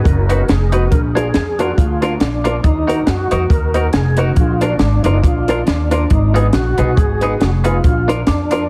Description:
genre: ska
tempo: 139 BPM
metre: 4/4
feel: swing 57% on 8ths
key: unclear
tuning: A4 = 441 Hz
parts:
  - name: percussive tonewheel organ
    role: melody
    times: 0.0-8.7 s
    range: D4 to Bb4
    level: -23 LUFS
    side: equal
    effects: overdrive, chorus vibrato, slow rotary speaker, analog delay
  - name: upright bass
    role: bass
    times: 0.0-8.6 s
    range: F1 to Gb2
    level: -19 LUFS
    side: equal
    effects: none
  - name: compact cocktail drum kit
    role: drums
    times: 0.1-8.6 s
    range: hi-hat, kick drum, snare drum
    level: -19 LUFS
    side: equal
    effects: none
  - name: semi-hollow electric guitar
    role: accompaniment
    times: 0.3-8.6 s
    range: Cb4 to B4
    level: -27 LUFS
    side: equal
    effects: none
  - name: dark upright piano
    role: stabs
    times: 0.3-8.6 s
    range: Bb3 to B4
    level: -24 LUFS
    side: equal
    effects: none
room: light reverb, studio ambience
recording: heavily compressed radio sound, multiband compression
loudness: -15 LUFS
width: mono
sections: 0.0-8.7 A section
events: none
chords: 0.0 B; 0.9 Bb; 2.6 Ebm; 4.4 Bb; 6.1 Abm; 7.8 Bb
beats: 0.05 0.49 | 0.92 1.35 1.78 2.21 | 2.65 3.08 3.51 3.94 | 4.37 4.81 5.24 5.67 | 6.11 6.54 6.97 7.41 | 7.84 8.28

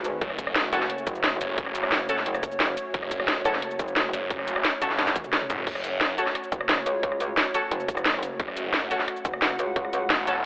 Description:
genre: dark technical drum and bass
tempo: 176 BPM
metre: 4/4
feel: straight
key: F# minor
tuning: A4 = 438 Hz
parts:
  - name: dark analog pad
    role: sustained chords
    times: 0.0-10.5 s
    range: A3 to F#5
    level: -32 LUFS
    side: equal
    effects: chorus, sidechain pumping
  - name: metallic wobble bass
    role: bass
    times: 0.0-4.1, 6.5-10.1 s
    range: F#1 to C#2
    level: -30 LUFS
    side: equal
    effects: chorus
  - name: drum and bass drum kit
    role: drums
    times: 0.0-10.3 s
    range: cabasa, crash cymbal, hi-hat, rim click, snare drum, toms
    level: -25 LUFS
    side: equal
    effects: none
  - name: snarling distorted saw bass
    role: bass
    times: 0.2-6.2, 8.4-10.5 s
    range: E1 to A1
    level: -30 LUFS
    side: equal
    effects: distortion, overdrive, sidechain pumping
  - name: electronic kick drum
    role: drums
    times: 0.2-9.8 s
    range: none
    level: -30 LUFS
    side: equal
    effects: overdrive
  - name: orchestra-hit-like synth stab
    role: stabs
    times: 0.7-10.3 s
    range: C#4 to A4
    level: -30 LUFS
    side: equal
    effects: built-in reverb, digital delay
room: moderate lush hall reverb, RT60 2.1 s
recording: telephone sound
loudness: -23 LUFS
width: side -23 dB against mid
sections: 0.0-5.7 A section; 5.7-10.5 A section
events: drop 0.0-5.7, 5.7-10.5; drum fill 5.0-5.7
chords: 0.0 F#m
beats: | 0.21 0.56 0.90 1.24 | 1.58 1.92 2.26 2.60 | 2.94 3.28 3.62 3.96 | 4.30 4.65 4.99 5.33 | 5.67 6.01 6.35 6.69 | 7.03 7.37 7.71 8.05 | 8.40 8.74 9.08 9.42 | 9.76 10.10 10.44

